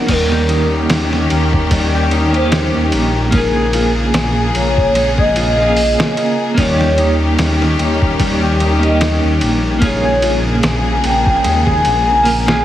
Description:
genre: trip hop.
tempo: 74 BPM.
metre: 4/4.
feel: swing 56% on 16ths.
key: unclear.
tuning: A4 = 440 Hz.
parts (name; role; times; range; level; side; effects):
clean electric guitar; accompaniment; 0.0-12.6 s; Bb3 to Bb4; -20 LUFS; right 3 dB; tremolo, tape echo.
rich symphonic string section; sustained chords; 0.0-12.6 s; Db3 to Ab4; -20 LUFS; left 2 dB; none.
pure breathy sine lead; melody; 0.1-12.6 s; Bb4 to Ab5; -18 LUFS; equal; analog chorus, tape echo.
concert harp; arpeggios; 0.1-12.6 s; G3 to Bb4; -21 LUFS; left 3 dB; ping-pong delay.
dark detuned saw bass; bass; 0.1-12.6 s; Bb1 to Eb2; -17 LUFS; equal; none.
trip hop sampler-style drum kit; drums; 0.1-12.6 s; crash cymbal, hi-hat, kick drum, ride cymbal, snare drum; -19 LUFS; equal; studio reverb.
room: digital ambience.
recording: heavily compressed radio sound, vinyl crackle.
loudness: -12 LUFS.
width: side -12 dB against mid.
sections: 0.1-12.6 A section.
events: none.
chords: 0.1 Eb7; 3.3 Bbm7; 6.6 Eb7; 9.8 Bbm7.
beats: | 0.09 0.90 1.71 2.52 | 3.33 4.14 4.96 5.77 | 6.58 7.39 8.20 9.01 | 9.82 10.63 11.44 12.25.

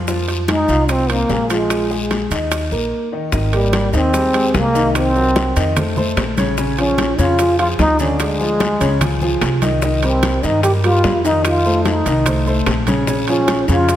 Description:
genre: Afro-Cuban jazz.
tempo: 148 BPM.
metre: 4/4.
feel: straight.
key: F minor, Ab major from 3.3 s.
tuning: A4 = 440 Hz.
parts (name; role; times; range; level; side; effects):
warm concert grand piano; accompaniment; 0.0-14.0 s; Db3 to F5; -20 LUFS; left 1 dB; none.
upright bass; bass; 0.0-14.0 s; Ab1 to G2; -20 LUFS; equal; none.
bongos; percussion; 0.1-14.0 s; none; -28 LUFS; left 6 dB; none.
congas; percussion; 0.1-14.0 s; none; -26 LUFS; equal; none.
guiro; percussion; 0.1-14.0 s; none; -30 LUFS; left 5 dB; none.
maracas; percussion; 0.1-14.0 s; none; -35 LUFS; right 7 dB; none.
timbales; percussion; 0.3-14.0 s; none; -27 LUFS; right 6 dB; none.
trombone with plunger mute; melody; 0.5-14.0 s; G3 to G4; -18 LUFS; equal; none.
room: moderate concert hall reverb, RT60 2.0 s.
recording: none.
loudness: -14 LUFS.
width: side -12 dB against mid.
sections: 0.0-3.3 A section; 3.3-14.0 B section.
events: break 2.9-3.3.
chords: 0.1 Fm7; 1.7 Bb5; 2.5 Eb5; 3.3 Abmaj9; 5.0 Cm7b5; 5.8 F; 6.6 Bbm7; 8.2 Ddim; 9.0 Db; 9.8 Cm7; 11.5 F7; 13.1 Bbm7.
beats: | 0.08 0.48 0.89 1.30 | 1.70 2.11 2.52 2.92 | 3.33 3.73 4.14 4.55 | 4.95 5.36 5.76 6.17 | 6.58 6.98 7.39 7.79 | 8.20 8.61 9.01 9.42 | 9.83 10.23 10.64 11.04 | 11.45 11.86 12.26 12.67 | 13.07 13.48 13.89.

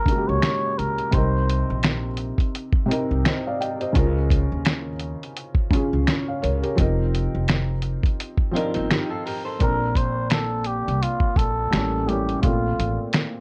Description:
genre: lo-fi hip hop.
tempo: 85 BPM.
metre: 4/4.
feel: swing 56% on 16ths.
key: unclear.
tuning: A4 = 440 Hz.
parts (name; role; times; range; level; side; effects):
trumpet with cup mute; melody; 0.0-1.8, 9.6-13.1 s; F4 to Db5; -29 LUFS; equal; analog delay, plate reverb.
felt-muted upright piano; accompaniment; 0.0-13.4 s; A2 to G5; -29 LUFS; equal; cassette tape.
lo-fi sampler-style drum kit; drums; 0.1-13.3 s; finger snaps, hi-hat, kick drum, snare drum; -24 LUFS; equal; none.
upright bass; bass; 0.3-13.0 s; F1 to Eb2; -27 LUFS; equal; none.
electric guitar through a small old amp; second line; 8.5-9.8 s; C4 to C5; -33 LUFS; equal; analog delay, plate reverb.
room: light reverb.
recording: cassette tape.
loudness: -23 LUFS.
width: mono.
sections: 0.0-9.6 A section; 9.6-13.4 B section.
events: none.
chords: 0.0 Db6; 1.1 Cm7; 4.0 Db6; 6.8 F7sus4; 9.6 Bbadd9; 11.7 A7b9; 12.4 Dm7 (rootless).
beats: 0.43 | 1.14 1.84 2.55 3.25 | 3.96 4.67 5.37 6.08 | 6.78 7.49 8.20 8.90 | 9.61 10.31 11.02 11.72 | 12.43 13.14.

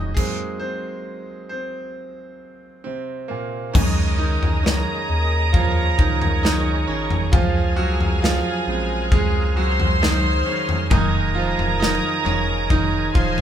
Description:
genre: pop ballad.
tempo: 67 BPM.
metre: 4/4.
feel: straight.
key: Db major.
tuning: A4 = 441 Hz.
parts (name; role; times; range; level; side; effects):
clear concert grand piano; accompaniment; 0.0-13.4 s; Bb2 to Gb5; -25 LUFS; right 3 dB; none.
overdriven tonewheel organ; sustained chords; 0.0-13.4 s; Db3 to Ab5; -29 LUFS; equal; chorus vibrato, slow rotary speaker.
warm sub bass; bass; 0.0-13.4 s; Eb1 to Eb2; -23 LUFS; left 1 dB; none.
modern studio drum kit; drums; 0.2-13.4 s; crash cymbal, kick drum, snare drum, toms; -21 LUFS; equal; none.
warm studio violin section; second line; 3.7-13.4 s; Ab4 to C6; -25 LUFS; right 2 dB; none.
room: light reverb.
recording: band playing live in one room.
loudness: -18 LUFS.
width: side -9 dB against mid.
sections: 0.0-3.7 A section; 3.7-13.4 B section.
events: grand piano solo 0.0-3.7, 3.7-13.4; stop 0.2-3.7.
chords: 0.0 Ab7; 3.7 Dbsus2; 7.3 Bbm7; 10.9 Ebsus4.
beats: | 0.17 1.06 1.96 2.85 | 3.75 4.64 5.54 6.43 | 7.33 8.22 9.12 10.02 | 10.91 11.81 12.70.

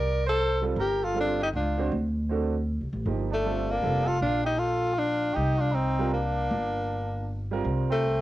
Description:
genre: jazz.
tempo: 157 BPM.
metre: 3/4.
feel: swing 64% on 8ths.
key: G minor.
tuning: A4 = 445 Hz.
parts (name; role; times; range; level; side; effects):
clear tenor saxophone; melody; 0.0-8.2 s; A3 to Bb4; -27 LUFS; left 2 dB; cassette tape.
breathy trumpet; second line; 0.0-8.2 s; C4 to D5; -33 LUFS; right 6 dB; none.
upright bass; bass; 0.0-8.2 s; F1 to D2; -29 LUFS; equal; none.
clear concert grand piano; accompaniment; 0.6-8.0 s; F3 to C5; -31 LUFS; right 5 dB; none.
room: light reverb, studio reverb.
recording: home recording on cassette.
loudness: -24 LUFS.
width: side -15 dB against mid.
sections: 0.0-3.1 A section; 3.1-8.2 A section.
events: none.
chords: 0.0 Csus2; 0.8 Gsus2; 1.9 D7; 3.1 Gm9; 5.4 Cm9; 6.5 Gm; 7.7 C7(no3).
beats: 0.01 0.39 | 0.77 1.15 1.54 | 1.92 2.30 2.68 | 3.07 3.45 3.83 | 4.21 4.60 4.98 | 5.36 5.75 6.13 | 6.51 6.89 7.28 | 7.66 8.04.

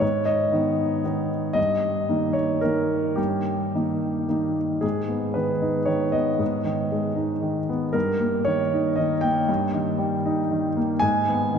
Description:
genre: neoclassical minimalist piano.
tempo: 116 BPM.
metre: 3/4.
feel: rubato.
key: G# harmonic minor.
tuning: A4 = 441 Hz.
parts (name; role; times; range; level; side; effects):
warm concert grand piano; solo; 0.0-11.6 s; G2 to G#5; -21 LUFS; equal; none.
room: wet cathedral reverb, RT60 4.6 s.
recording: recorded in a church or concert hall.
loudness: -21 LUFS.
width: side -7 dB against mid.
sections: 0.0-4.8 A section; 4.8-11.6 B section.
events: none.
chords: 0.0 G#m; 1.6 D#/G; 4.8 G#m; 8.0 D#/G; 11.0 G#m.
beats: | 0.02 0.53 1.05 | 1.57 2.09 2.63 | 3.18 3.73 4.29 | 4.83 5.36 5.88 | 6.41 6.92 7.43 | 7.95 8.46 8.98 | 9.48 10.00 10.51 | 11.03 11.54.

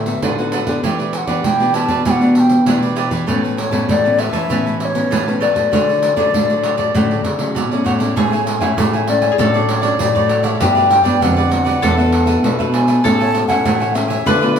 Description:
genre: samba and choro.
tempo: 98 BPM.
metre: 4/4.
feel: straight.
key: D major, A major from 8.2 s.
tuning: A4 = 440 Hz.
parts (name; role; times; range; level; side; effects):
wooden flute; melody; 0.0-14.6 s; C#5 to A5; -19 LUFS; left 2 dB; none.
nylon-string guitar; accompaniment; 0.0-14.6 s; G2 to A4; -22 LUFS; left 3 dB; none.
nylon-string guitar; bass; 0.0-14.6 s; E2 to E3; -18 LUFS; equal; none.
pandeiro; percussion; 0.1-14.6 s; none; -21 LUFS; right 3 dB; none.
cavaquinho; accompaniment; 0.2-14.6 s; D4 to A5; -24 LUFS; right 4 dB; none.
mandolin; second line; 8.2-14.6 s; G4 to B4; -20 LUFS; left 4 dB; none.
room: wet studio reverb, RT60 0.9 s.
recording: band playing live in one room.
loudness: -13 LUFS.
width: side -7 dB against mid.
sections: 0.0-8.2 A section; 8.2-14.6 B section.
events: none.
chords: 0.0 D6; 0.8 Em7; 3.3 Aadd9; 5.7 Dmaj7; 8.2 Amaj7; 9.4 Dmaj7/A; 10.6 Gmaj7; 11.8 E7sus4; 13.0 Amaj7.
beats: 0.22 | 0.83 1.45 2.06 2.67 | 3.28 3.89 4.50 5.12 | 5.73 6.34 6.95 7.56 | 8.17 8.78 9.39 10.00 | 10.61 11.22 11.83 12.44 | 13.05 13.66 14.27.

